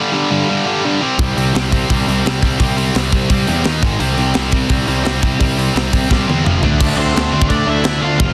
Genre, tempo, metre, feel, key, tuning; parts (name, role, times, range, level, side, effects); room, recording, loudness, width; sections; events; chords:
punk rock; 171 BPM; 4/4; straight; D minor; A4 = 439 Hz
tight distorted guitar; riff; 0.0-8.3 s; F2 to Eb4; -19 LUFS; equal; distortion
fuzz picked electric bass; bass; 1.2-8.3 s; F1 to E2; -20 LUFS; equal; overdrive
tight metal drum kit; drums; 1.2-8.3 s; crash cymbal, hi-hat, kick drum, snare drum, toms; -20 LUFS; equal
overdriven semi-hollow guitar; melody; 7.0-8.3 s; C4 to F5; -22 LUFS; equal
little or no reverb; dense, heavily limited modern master; -15 LUFS; mono
0.0-6.8 A section; 6.8-8.3 B section
drum fill 6.1-6.8
0.0 G5; 1.0 C5; 3.7 Eb5; 3.8 G#5; 4.0 C5; 6.5 F5; 6.6 D5